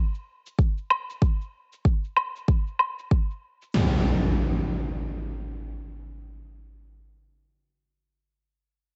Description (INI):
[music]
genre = organic downtempo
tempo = 95 BPM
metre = 4/4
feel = swing 59% on 16ths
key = none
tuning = none
[part]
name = cabasa and woodblock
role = drums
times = 0.1-3.7 s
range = none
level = -26 LUFS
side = equal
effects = overdrive, low-pass filter on perc
[part]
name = electronic kick drum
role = drums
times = 0.6-3.3 s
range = none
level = -24 LUFS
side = equal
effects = overdrive
[part]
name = impact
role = sound effects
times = 3.7-7.1 s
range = none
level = -28 LUFS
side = equal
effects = none
[sound]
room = moderate lush hall reverb, RT60 2.1 s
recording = nothing above 8.0 kHz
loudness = -26 LUFS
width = mono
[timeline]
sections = 0.0-3.7 A section; 3.7-6.3 B section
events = filter sweep on drum 0.0-3.7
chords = none